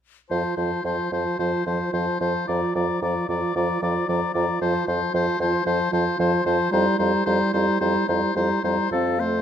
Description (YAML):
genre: quick classical-period movement for wind quintet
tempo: 111 BPM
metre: 4/4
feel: rubato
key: F major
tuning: A4 = 440 Hz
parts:
  - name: mellow hollow concert flute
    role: melody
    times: 0.3-9.2 s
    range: F5 to Bb5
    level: -29 LUFS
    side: left 10 dB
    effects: none
  - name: clear oboe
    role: second line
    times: 0.3-9.4 s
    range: A4 to D5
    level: -27 LUFS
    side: left 4 dB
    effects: none
  - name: dark clarinet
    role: accompaniment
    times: 0.3-9.4 s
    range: E4 to A4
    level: -29 LUFS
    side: right 10 dB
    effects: none
  - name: warm French horn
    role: accompaniment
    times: 0.3-9.4 s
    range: F3 to C4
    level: -26 LUFS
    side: equal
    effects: none
  - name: mellow bassoon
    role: bass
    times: 0.3-9.4 s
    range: F2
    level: -26 LUFS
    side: right 2 dB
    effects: none
room: moderate recital hall reverb, RT60 1.5 s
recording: none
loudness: -20 LUFS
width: side -9 dB against mid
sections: 0.3-8.9 A section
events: none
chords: 0.3 F; 6.7 C7/F; 8.9 F